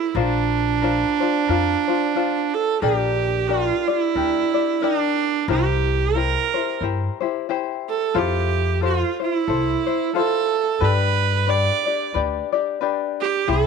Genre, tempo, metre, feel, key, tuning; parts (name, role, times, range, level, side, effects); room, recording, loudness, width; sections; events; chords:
Hawaiian; 90 BPM; 4/4; swing 58% on 8ths; A4 = 441 Hz
rich viola; melody; 0.0-13.7 s; D4 to D5; -21 LUFS; right 10 dB
tenor ukulele; accompaniment; 0.0-13.7 s; C4 to D5; -24 LUFS; left 14 dB
upright bass; bass; 0.1-13.7 s; Bb1 to G2; -23 LUFS; left 2 dB
light reverb; 1960s-style stereo with parts hard left and right; -19 LUFS; side -5 dB against mid
0.0-13.7 A section
0.2 Bbadd9; 2.8 Gm/Bb; 5.5 C7; 8.2 Fmaj7; 10.8 G